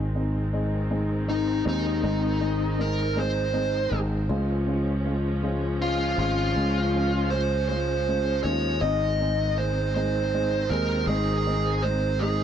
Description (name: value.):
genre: pop.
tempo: 53 BPM (dotted quarters).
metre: 6/8.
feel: straight.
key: Ab major.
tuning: A4 = 439 Hz.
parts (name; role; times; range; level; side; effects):
dark upright piano; accompaniment; 0.0-12.4 s; Ab3 to F4; -30 LUFS; equal; none.
warm studio string section; sustained chords; 0.0-12.4 s; Eb3 to Db4; -34 LUFS; left 1 dB; none.
sustaining fretless electric bass; bass; 0.0-12.4 s; Ab1 to Eb2; -27 LUFS; equal; none.
smooth overdriven lead guitar; melody; 1.3-12.4 s; Eb4 to Eb5; -27 LUFS; right 1 dB; none.
room: light reverb, small room ambience.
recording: none.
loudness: -23 LUFS.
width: side -9 dB against mid.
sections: 0.0-12.4 A section.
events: none.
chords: 0.0 Ab; 4.3 Db; 8.8 Ab.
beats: 0.90 | 2.04 3.17 | 4.30 5.43 | 6.56 7.69 | 8.82 9.95 | 11.08 12.21.